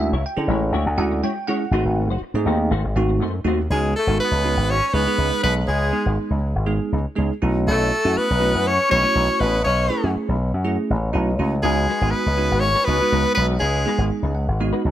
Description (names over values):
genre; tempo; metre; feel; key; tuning
jazz; 121 BPM; 4/4; straight; unclear; A4 = 440 Hz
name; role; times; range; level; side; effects
bell-like tine electric piano; accompaniment; 0.0-14.9 s; G#3 to G5; -24 LUFS; right 3 dB; analog chorus
slap bass with an envelope filter; bass; 0.0-14.9 s; F#1 to D3; -21 LUFS; equal; none
clean electric guitar; stabs; 0.1-3.6, 11.6-14.9 s; G#3 to C#5; -30 LUFS; left 6 dB; ensemble chorus
bright soprano saxophone; melody; 3.7-14.1 s; G#4 to C#5; -21 LUFS; right 1 dB; slapback echo
warm tenor saxophone; second line; 3.7-14.1 s; G#3 to C#4; -26 LUFS; left 5 dB; slapback echo
room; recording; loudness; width
light reverb; none; -18 LUFS; side -12 dB against mid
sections
0.0-3.7 A section; 3.7-14.9 B section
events
tine electric piano fill 14.1-14.9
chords
0.0 Dmaj9#11; 1.7 G#7b9; 3.7 C#9sus4; 7.4 B9sus4; 11.6 C#9sus4